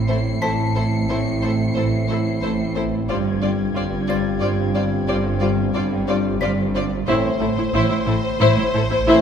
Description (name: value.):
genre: cinematic, suspense film score.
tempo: 90 BPM.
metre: 3/4.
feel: straight.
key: A minor.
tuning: A4 = 440 Hz.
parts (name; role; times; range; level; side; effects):
dark French horn section; sustained chords; 0.0-9.2 s; C4 to F4; -28 LUFS; left 1 dB; none.
dark trombone section; sustained chords; 0.0-9.2 s; D3 to A3; -29 LUFS; right 5 dB; none.
Celtic harp; riff; 0.0-9.2 s; G2 to A3; -26 LUFS; left 4 dB; none.
rich symphonic cello section; bass; 0.0-9.1 s; G2 to A2; -25 LUFS; right 2 dB; none.
rich symphonic double bass section; bass; 0.0-9.1 s; G1 to A1; -25 LUFS; right 3 dB; none.
swarming drone; drone; 0.3-9.2 s; G1 to A1; -33 LUFS; left 1 dB; built-in reverb.
rich studio violin section; texture; 0.0-6.7 s; G5 to C#7; -35 LUFS; left 4 dB; none.
rich studio violin section; melody; 0.1-9.2 s; C5 to D5; -27 LUFS; left 2 dB; none.
warm symphonic violin section; second line; 0.1-9.2 s; A4 to C5; -26 LUFS; left 5 dB; none.
clear symphonic viola section; accompaniment; 0.1-9.2 s; E4 to F4; -25 LUFS; equal; none.
music box; texture; 0.4-8.4 s; A5 to B6; -30 LUFS; left 4 dB; none.
room: moderate scoring stage reverb, RT60 1.7 s.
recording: minimal, uncompressed stereo recording.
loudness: -18 LUFS.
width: side -8 dB against mid.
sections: 0.0-9.2 A section.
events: none.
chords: 0.0 Am; 3.1 G7sus4; 7.1 Am.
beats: 0.42 | 1.09 1.76 2.42 | 3.09 3.75 4.42 | 5.08 5.74 6.41 | 7.07 7.74 8.40 | 9.07.